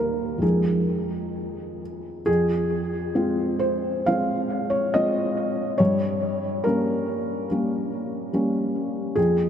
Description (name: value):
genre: neoclassical minimalist piano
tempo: 63-72 BPM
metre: 4/4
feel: rubato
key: F minor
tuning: A4 = 440 Hz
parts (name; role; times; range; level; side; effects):
- felt-muted upright piano; solo; 0.0-9.5 s; Eb2 to F5; -22 LUFS; equal; tape echo
room: wet huge ambient reverb, RT60 4.2 s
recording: dreamy mix soaked in reverb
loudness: -22 LUFS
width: side -9 dB against mid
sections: 0.0-2.3 A section; 2.3-9.5 A section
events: none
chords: 0.4 Fm7; 2.3 Fm; 5.8 Gdim